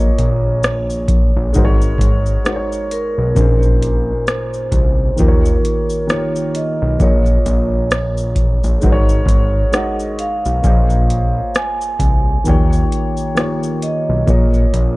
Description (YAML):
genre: lo-fi hip hop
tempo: 66 BPM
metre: 4/4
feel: swing 59% on 16ths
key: Bb minor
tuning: A4 = 443 Hz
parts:
  - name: vibraphone with soft mallets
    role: melody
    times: 0.0-15.0 s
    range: Bb4 to Ab5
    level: -22 LUFS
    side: right 1 dB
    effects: low-pass filter
  - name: dark upright piano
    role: accompaniment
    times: 0.0-15.0 s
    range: Bb2 to Eb5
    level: -21 LUFS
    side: equal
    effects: cassette tape, low-pass filter
  - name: fat analog bass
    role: bass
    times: 0.0-15.0 s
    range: Ab1 to Eb2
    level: -18 LUFS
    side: equal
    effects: none
  - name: booming analog drum machine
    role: drums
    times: 0.2-15.0 s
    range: hi-hat, kick drum, rim click, shaker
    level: -16 LUFS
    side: equal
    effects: vintage 12-bit sampler grit
room: digital ambience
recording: cassette tape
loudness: -13 LUFS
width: side -21 dB against mid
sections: 0.0-15.0 A section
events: none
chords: 0.0 Bbm7; 1.5 Ab7sus4; 3.4 Bbm11; 5.2 Eb7; 7.0 Bbm7; 8.8 Ab7sus4; 10.6 Bbm11; 12.5 Eb7; 14.3 Bbm7